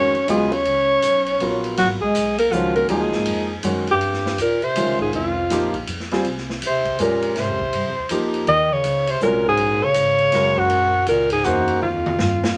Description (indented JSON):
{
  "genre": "modal jazz",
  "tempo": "161 BPM",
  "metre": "3/4",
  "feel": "swing 64% on 8ths",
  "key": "G# dorian, F phrygian from 4.0 s",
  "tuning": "A4 = 440 Hz",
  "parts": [
    { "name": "clear alto saxophone", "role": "melody", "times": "0.0-12.6 s", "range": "F4 to Eb5", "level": "-21 LUFS", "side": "equal", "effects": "none" },
    { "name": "breathy bass clarinet", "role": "second line", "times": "0.0-12.6 s", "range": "F2 to C#4", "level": "-28 LUFS", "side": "equal", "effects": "none" },
    { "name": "clear baby grand piano", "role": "accompaniment", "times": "0.0-11.8 s", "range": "C#3 to C5", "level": "-26 LUFS", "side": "equal", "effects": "none" },
    { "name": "upright bass", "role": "bass", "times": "0.0-12.5 s", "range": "Gb1 to Ab2", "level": "-34 LUFS", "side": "equal", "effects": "none" },
    { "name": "swinging big-band drum kit", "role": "drums", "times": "0.1-12.5 s", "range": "hi-hat, kick drum, ride cymbal, snare drum, toms", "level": "-32 LUFS", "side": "equal", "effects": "none" }
  ],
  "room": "wet studio reverb, RT60 0.7 s",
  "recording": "none",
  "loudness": "-20 LUFS",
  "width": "mono",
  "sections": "0.0-4.0 A section; 4.0-12.6 B section",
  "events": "drum fill 11.8-12.6",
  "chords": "0.0 G#13sus4; 4.0 Fm11; 8.5 Ebm7; 11.8 F7(no3)"
}